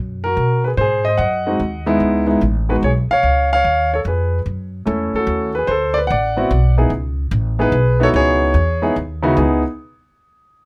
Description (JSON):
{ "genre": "jazz piano trio", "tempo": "147 BPM", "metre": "3/4", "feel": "swing 67% on 8ths", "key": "C# minor", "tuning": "A4 = 441 Hz", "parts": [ { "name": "upright bass", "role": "bass", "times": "0.0-9.6 s", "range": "A1 to B2", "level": "-22 LUFS", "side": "equal", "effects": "none" }, { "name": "warm grand piano", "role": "melody", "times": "0.2-9.6 s", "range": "C#3 to F#5", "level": "-19 LUFS", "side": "equal", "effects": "none" } ], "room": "light reverb", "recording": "close, detailed microphones", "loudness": "-17 LUFS", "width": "mono", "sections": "0.0-9.4 A section; 9.4-10.6 B section", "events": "none", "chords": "0.0 B5; 0.8 G#7; 2.0 C#m9; 3.2 C#; 4.5 F#m7; 5.7 D13; 6.9 C#m7; 9.4 N.C." }